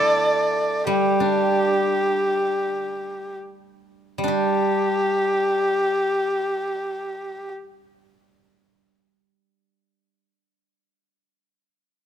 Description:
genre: chinese traditional, Chinese chamber ensemble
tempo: free time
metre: none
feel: none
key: unclear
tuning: A4 = 441 Hz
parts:
  - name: dark erhu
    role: melody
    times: 0.0-7.5 s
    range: G4 to D5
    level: -21 LUFS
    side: left 1 dB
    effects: none
  - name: steel-string zither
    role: accompaniment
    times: 0.0-10.2 s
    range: D3 to A4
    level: -24 LUFS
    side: right 2 dB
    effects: none
room: light reverb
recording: close, detailed microphones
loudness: -20 LUFS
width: side -9 dB against mid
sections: 0.0-4.3 A section; 4.3-9.3 B section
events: slowing down 0.0-4.3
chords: none

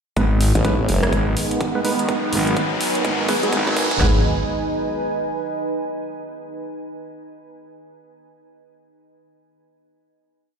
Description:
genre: bass house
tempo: 125 BPM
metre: 4/4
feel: swing 61% on 16ths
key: G# minor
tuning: A4 = 440 Hz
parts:
  - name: sweeping resonant pad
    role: sustained chords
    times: 0.2-4.2 s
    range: D#3 to D#5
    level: -26 LUFS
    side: right 1 dB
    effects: chorus, sidechain pumping
  - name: percussive organ stab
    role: stabs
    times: 0.2-4.2 s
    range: G#3 to B4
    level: -26 LUFS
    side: right 4 dB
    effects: chorus, sidechain pumping, tape echo
  - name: growling FM bass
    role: bass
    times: 0.2-4.2 s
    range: G#1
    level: -19 LUFS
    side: equal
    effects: sidechain pumping
  - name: big-room dance drum kit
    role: drums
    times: 0.2-4.1 s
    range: kick drum, snare drum, toms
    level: -25 LUFS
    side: equal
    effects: overdrive, high-pass filter on kick, high-pass filter on snare, high-pass filter on toms
  - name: big-room dance drum kit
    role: drums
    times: 0.2-4.0 s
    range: hi-hat, rim click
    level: -27 LUFS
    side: right 1 dB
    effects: overdrive
  - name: riser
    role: sound effects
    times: 1.2-4.0 s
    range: none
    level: -27 LUFS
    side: left 1 dB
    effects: none
  - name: deep dark ambient pad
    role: texture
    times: 1.0-5.9 s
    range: D#4 to G#5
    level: -26 LUFS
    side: right 1 dB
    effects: chorus, built-in reverb, sidechain pumping
  - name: formant-sweep wobble bass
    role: bass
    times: 0.6-1.1 s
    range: F#1 to A1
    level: -18 LUFS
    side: equal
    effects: chorus, overdrive, sidechain pumping
room: light reverb, digital ambience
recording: played on a big sound system in a bare room, large studio reverb, high-pass filter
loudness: -18 LUFS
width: side -6 dB against mid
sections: 0.2-4.0 build; 4.0-5.9 final chord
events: build-up 0.2-4.0; filter sweep 0.2-4.0; riser 1.2-4.0; drum fill 2.1-4.0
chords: 0.2 G#m

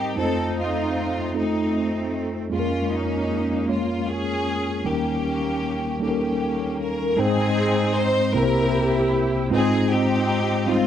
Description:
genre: gospel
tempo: 51 BPM (dotted quarters)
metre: 6/8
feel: straight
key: Ab major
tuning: A4 = 440 Hz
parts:
  - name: clear symphonic string section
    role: melody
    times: 0.0-10.9 s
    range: Ab3 to C5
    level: -24 LUFS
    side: right 1 dB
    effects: none
  - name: mellow tine electric piano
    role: accompaniment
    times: 0.0-10.9 s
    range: C2 to G5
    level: -23 LUFS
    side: left 1 dB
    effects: medium stereo tremolo
room: small room ambience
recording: dry, close 1970s-style studio recording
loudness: -20 LUFS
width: side -10 dB against mid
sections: 0.0-7.2 A section; 7.2-10.9 B section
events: none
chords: 0.2 F7; 2.5 Bbm7/F; 4.9 Eb7; 7.2 Abmaj7; 8.3 C7; 9.5 Fm7/Ab

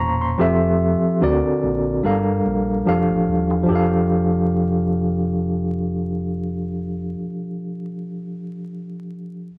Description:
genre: R&B, neo-soul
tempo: 73 BPM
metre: 4/4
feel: swing 55% on 16ths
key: F major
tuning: A4 = 441 Hz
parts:
  - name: barky tine electric piano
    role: accompaniment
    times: 0.0-9.5 s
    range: Bb2 to Db6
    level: -22 LUFS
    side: equal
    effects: overdrive, fast tremolo
  - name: deep dub fingered electric bass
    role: bass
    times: 0.0-7.1 s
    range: Eb1 to D2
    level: -29 LUFS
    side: equal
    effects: none
room: wet studio reverb, RT60 0.7 s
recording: vinyl crackle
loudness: -21 LUFS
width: mono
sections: 0.0-3.7 A section; 3.7-7.0 B section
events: none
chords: 0.4 Fmaj9; 1.2 D7b13; 2.0 Gm9; 2.9 F69

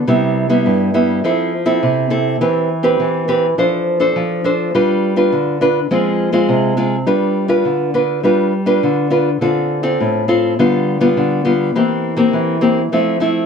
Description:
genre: samba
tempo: 103 BPM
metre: 4/4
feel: straight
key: C major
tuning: A4 = 436 Hz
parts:
  - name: nylon-string guitar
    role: solo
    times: 0.0-13.5 s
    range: G2 to C5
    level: -13 LUFS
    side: equal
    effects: none
room: moderate studio reverb, RT60 0.8 s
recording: none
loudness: -13 LUFS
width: side -6 dB against mid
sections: 0.1-13.5 A section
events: none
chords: 0.1 Cmaj7; 1.2 Fmaj7; 2.4 Cmaj7/E; 3.6 Dm7/F; 4.7 G7; 5.9 Fm; 7.1 G7; 9.4 Dm7; 10.6 G7/D; 11.7 C7/E; 12.9 Fmaj7

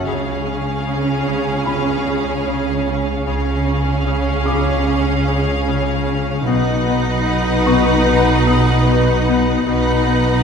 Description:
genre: cinematic, suspense film score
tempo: 75 BPM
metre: 4/4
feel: straight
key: unclear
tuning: A4 = 440 Hz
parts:
  - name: rich studio violin section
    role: melody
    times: 0.0-10.4 s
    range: E#5 to F#5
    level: -27 LUFS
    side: left 3 dB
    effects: none
  - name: rich studio violin section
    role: second line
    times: 0.0-10.4 s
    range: G#4 to B4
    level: -24 LUFS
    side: left 2 dB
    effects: none
  - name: clear studio viola section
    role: accompaniment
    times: 0.0-10.4 s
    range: C#4 to D#4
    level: -22 LUFS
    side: right 1 dB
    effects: none
  - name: Celtic harp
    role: riff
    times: 0.0-10.4 s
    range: F#2 to C#4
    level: -22 LUFS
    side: left 5 dB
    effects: none
  - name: clear studio double bass section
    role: bass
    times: 0.0-10.4 s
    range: B1 to C#2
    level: -21 LUFS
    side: right 2 dB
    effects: none
  - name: rich studio cello section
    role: bass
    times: 0.0-10.4 s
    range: B2 to C#3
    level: -23 LUFS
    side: right 2 dB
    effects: none
  - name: felt-muted upright piano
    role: texture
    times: 0.0-10.4 s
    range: B5 to D#6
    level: -31 LUFS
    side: left 1 dB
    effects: none
room: wet scoring stage reverb, RT60 1.5 s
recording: heard from further back in the room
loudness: -15 LUFS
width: side -6 dB against mid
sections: 0.0-10.4 A section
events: none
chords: 0.1 C#; 6.5 B

